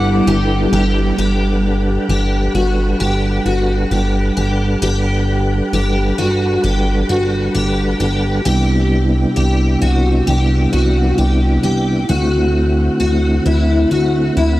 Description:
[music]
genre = dream pop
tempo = 66 BPM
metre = 4/4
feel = straight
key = G major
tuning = A4 = 436 Hz
[part]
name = clean lap steel guitar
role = melody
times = 0.0-0.7 s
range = G4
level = -31 LUFS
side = left 3 dB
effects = analog delay
[part]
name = twelve-string electric guitar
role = accompaniment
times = 0.0-1.7 s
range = G3 to A4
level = -22 LUFS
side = right 1 dB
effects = none
[part]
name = mellow tonewheel organ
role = sustained chords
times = 0.0-14.6 s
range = C3 to F#5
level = -18 LUFS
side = right 1 dB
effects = chorus vibrato, fast rotary speaker
[part]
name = picked twelve-string acoustic guitar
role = arpeggios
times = 0.0-14.6 s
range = E4 to F#5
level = -19 LUFS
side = left 1 dB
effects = ensemble chorus, analog delay
[part]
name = chorused synth bass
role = bass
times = 0.0-14.6 s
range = G1 to D2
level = -17 LUFS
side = equal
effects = none
[sound]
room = light reverb, digital ambience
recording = dry, gritty hardware recording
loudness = -13 LUFS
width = side -16 dB against mid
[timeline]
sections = 0.0-1.2 A section; 1.2-14.6 B section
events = none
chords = 0.0 G69; 1.2 Gmaj7; 8.5 Cmaj7; 12.1 D7

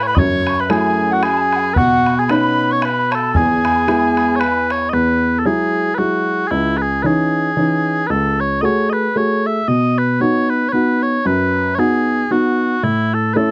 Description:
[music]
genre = celtic folk, Celtic waltz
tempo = 114 BPM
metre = 3/4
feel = swing 57% on 8ths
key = E major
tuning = A4 = 440 Hz
[part]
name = mellow small bagpipes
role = melody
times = 0.0-13.5 s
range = E4 to E5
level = -21 LUFS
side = equal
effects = none
[part]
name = mellow hollow tin whistle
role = second line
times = 0.0-4.7 s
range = F#5 to C#6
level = -22 LUFS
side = equal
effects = none
[part]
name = warm upright piano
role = accompaniment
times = 0.0-13.5 s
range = C#2 to G#4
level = -20 LUFS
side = equal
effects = none
[part]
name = bodhran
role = percussion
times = 0.2-4.8 s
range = none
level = -25 LUFS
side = equal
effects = none
[sound]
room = light reverb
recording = dry, close 1970s-style studio recording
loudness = -16 LUFS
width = mono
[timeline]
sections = 0.0-4.9 A section; 4.9-13.5 B section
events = none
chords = 0.2 F#m7; 1.8 Badd9; 3.3 E; 4.9 Eadd9; 6.5 C#madd9; 8.1 F#madd9/C#; 9.7 B; 12.8 A

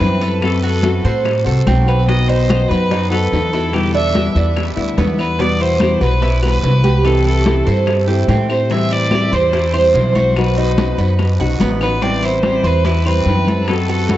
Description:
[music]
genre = latin, Cuban son and guajira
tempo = 145 BPM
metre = 4/4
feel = straight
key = E minor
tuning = A4 = 439 Hz
[part]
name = clear violin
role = melody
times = 0.0-14.2 s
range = G4 to E5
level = -20 LUFS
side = equal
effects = tape echo
[part]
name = nylon-string guitar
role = accompaniment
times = 0.0-14.2 s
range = B2 to F#4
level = -21 LUFS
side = left 4 dB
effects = tape echo
[part]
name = Cuban tres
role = arpeggios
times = 0.0-14.2 s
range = B3 to C5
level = -21 LUFS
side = right 4 dB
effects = tape echo
[part]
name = upright bass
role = bass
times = 0.0-14.2 s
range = A1 to A2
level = -16 LUFS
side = equal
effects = none
[part]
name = bongos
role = percussion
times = 0.0-14.2 s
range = none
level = -28 LUFS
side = left 3 dB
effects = none
[part]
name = congas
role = percussion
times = 0.0-14.2 s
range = none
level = -22 LUFS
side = left 2 dB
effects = none
[part]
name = guiro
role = percussion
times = 0.0-14.2 s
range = none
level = -34 LUFS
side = right 4 dB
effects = tape echo
[part]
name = claves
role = percussion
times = 0.4-13.9 s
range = none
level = -35 LUFS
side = left 5 dB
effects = none
[sound]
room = light reverb, studio ambience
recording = echo-heavy mix, cassette tape, nothing above 7.9 kHz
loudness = -13 LUFS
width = side -14 dB against mid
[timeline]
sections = 0.0-5.4 A section; 5.4-14.2 A section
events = drum fill 11.4-12.0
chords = 0.4 F#dim; 2.1 B; 3.7 Em7; 5.4 Emadd9; 7.1 C6; 8.7 Am7; 10.4 B; 12.0 Am7; 13.7 F#dim

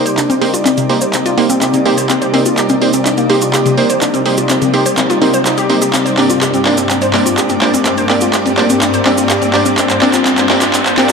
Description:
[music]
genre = progressive house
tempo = 125 BPM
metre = 4/4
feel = straight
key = C minor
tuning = A4 = 443 Hz
[part]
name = shimmering ambient pad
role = sustained chords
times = 0.0-11.1 s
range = G2 to D5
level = -17 LUFS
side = equal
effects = chorus, built-in reverb
[part]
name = glassy wavetable pluck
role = arpeggios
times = 0.0-11.1 s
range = C3 to C5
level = -14 LUFS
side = left 2 dB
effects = chorus, cassette tape, diffuse ambient delay
[part]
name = supersaw stab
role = stabs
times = 0.0-11.1 s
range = Bb3 to D5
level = -18 LUFS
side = right 3 dB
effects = low-pass filter, diffuse ambient delay
[part]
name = riser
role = sound effects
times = 4.0-11.1 s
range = none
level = -25 LUFS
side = equal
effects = none
[part]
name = pop drum kit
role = drums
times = 0.1-11.1 s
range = handclaps, hi-hat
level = -18 LUFS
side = right 1 dB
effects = high-pass filter on snare, high-pass filter on hats
[part]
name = cabasa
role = percussion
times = 0.1-11.1 s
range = none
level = -23 LUFS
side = right 4 dB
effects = none
[sound]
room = wet plate reverb, RT60 1.4 s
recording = dreamy mix soaked in reverb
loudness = -10 LUFS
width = side -5 dB against mid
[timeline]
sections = 0.0-11.1 A section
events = build-up 0.0-11.1; drum fill 0.0-11.1; filter sweep on synth arpeggio sound 0.0-11.1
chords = 0.0 Cm7; 5.9 Gm

